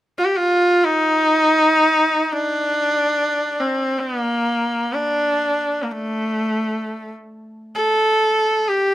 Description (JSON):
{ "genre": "indian classical", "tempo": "free time", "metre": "none", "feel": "none", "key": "D raga bhairavi", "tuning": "A4 = 440 Hz", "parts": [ { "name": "clear sarangi", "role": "melody", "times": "0.2-8.9 s", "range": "A3 to A4", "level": "-16 LUFS", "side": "equal", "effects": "none" } ], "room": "light reverb", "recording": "none", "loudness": "-16 LUFS", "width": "side -14 dB against mid", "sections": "0.0-8.9 A section", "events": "none", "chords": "none" }